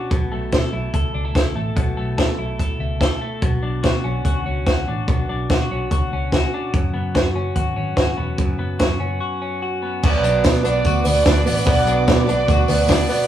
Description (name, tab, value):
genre	jangly indie pop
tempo	145 BPM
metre	4/4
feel	straight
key	B minor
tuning	A4 = 441 Hz
part	twelve-string electric guitar	arpeggios	0.0-13.3 s	F#2 to A4	-24 LUFS	left 3 dB	none
part	vintage muted fingered electric bass	bass	0.1-13.0 s	E1 to B2	-24 LUFS	equal	none
part	compact cocktail drum kit	drums	0.1-13.2 s	crash cymbal, hi-hat, kick drum, snare drum	-20 LUFS	right 1 dB	none
part	picked twelve-string acoustic guitar	accompaniment	10.0-13.3 s	B2 to D5	-18 LUFS	right 4 dB	none
part	warm studio string section	sustained chords	10.0-13.3 s	B4 to D6	-30 LUFS	left 1 dB	none
part	tambourine	percussion	10.0-13.2 s	none	-37 LUFS	left 4 dB	none
room	moderate studio reverb, RT60 0.6 s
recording	rough rehearsal-room recording, studio reverb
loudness	-17 LUFS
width	side -11 dB against mid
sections	0.0-10.0 A section; 10.0-13.3 B section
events	break 9.2-10.0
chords	0.1 Esus4; 3.4 Bmadd9; 6.7 F#sus4; 10.0 Bm